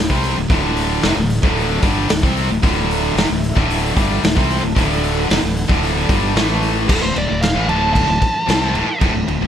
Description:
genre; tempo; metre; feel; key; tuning
hard rock; 113 BPM; 4/4; straight; D mixolydian; A4 = 440 Hz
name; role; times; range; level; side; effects
tight distorted guitar; riff; 0.0-9.5 s; D2 to C4; -21 LUFS; left 13 dB; distortion
tight distorted guitar; riff; 0.0-9.5 s; D2 to C4; -22 LUFS; right 12 dB; distortion
fuzz fingered electric bass; bass; 0.0-9.5 s; D1 to C2; -21 LUFS; equal; overdrive
raw garage drum kit; drums; 0.1-9.4 s; crash cymbal, hi-hat, kick drum, snare drum; -18 LUFS; equal; none
phased analog pad; sustained chords; 2.6-6.9 s; A3 to F#5; -31 LUFS; right 1 dB; phaser, chorus
bluesy overdriven lead guitar; melody; 6.9-9.0 s; A4 to A5; -20 LUFS; equal; distortion, analog delay
room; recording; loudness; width
light reverb; none; -14 LUFS; side -9 dB against mid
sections
0.0-6.9 A section; 6.9-9.5 B section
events
lead electric guitar solo 6.9-9.5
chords
0.0 D; 6.4 A5; 6.9 D5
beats
| 0.50 1.03 1.56 2.10 | 2.63 3.16 3.69 4.23 | 4.76 5.29 5.83 6.36 | 6.89 7.42 7.96 8.49 | 9.02

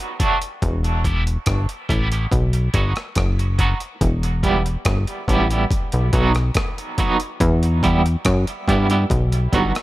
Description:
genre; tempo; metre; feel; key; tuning
dub reggae; 71 BPM; 4/4; straight; E harmonic minor; A4 = 440 Hz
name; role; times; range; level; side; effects
breakbeat sampler-style drum kit; drums; 0.0-9.8 s; hi-hat, kick drum, rim click; -22 LUFS; equal; none
electric guitar at the edge of break-up; accompaniment; 0.2-9.7 s; F#3 to G4; -23 LUFS; right 3 dB; tremolo, high-pass filter, dub echo
plucky analog bass; bass; 0.6-9.7 s; E1 to G2; -18 LUFS; equal; none
bongos; percussion; 1.1-3.8 s; none; barely audible; none; none
room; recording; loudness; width
digital ambience; echo-heavy mix; -17 LUFS; side -17 dB against mid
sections
0.6-9.8 A section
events
break 0.0-0.6; filter sweep 0.0-4.0; part muted 4.0-9.8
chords
0.0 D; 0.6 Em; 2.3 B; 4.0 Em; 5.7 B; 7.4 Em; 9.1 B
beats
| 0.62 1.47 2.31 3.16 | 4.01 4.86 5.71 6.55 | 7.40 8.25 9.10

